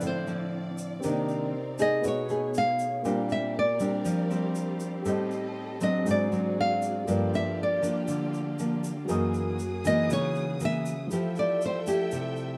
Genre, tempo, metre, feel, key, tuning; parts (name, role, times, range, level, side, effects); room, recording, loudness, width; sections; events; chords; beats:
bossa nova; 119 BPM; 4/4; straight; A4 = 440 Hz
nylon-string guitar; melody; 0.0-11.8 s; C5 to F5; -31 LUFS; equal
dark baby grand piano; accompaniment; 0.0-12.6 s; D3 to D#6; -37 LUFS; equal
nylon-string guitar; accompaniment; 0.0-12.6 s; F#2 to G#4; -32 LUFS; equal
warm studio string section; sustained chords; 0.0-12.6 s; Bb3 to D#6; -41 LUFS; equal
egg shaker; percussion; 0.0-12.6 s; -49 LUFS; equal
light reverb; -28 LUFS; mono
0.0-12.6 A section
nylon-string guitar solo 0.0-12.6
0.0 Dm9; 1.0 Cm9; 2.0 B13; 3.0 Bb69; 5.1 Am7b5; 6.1 G#7#11; 7.1 Gm7; 9.1 F#13; 11.1 Fmaj9
0.02 0.52 | 1.03 1.53 2.04 2.54 | 3.04 3.55 4.05 4.55 | 5.06 5.56 6.06 6.57 | 7.07 7.58 8.08 8.58 | 9.09 9.59 10.09 10.60 | 11.10 11.60 12.11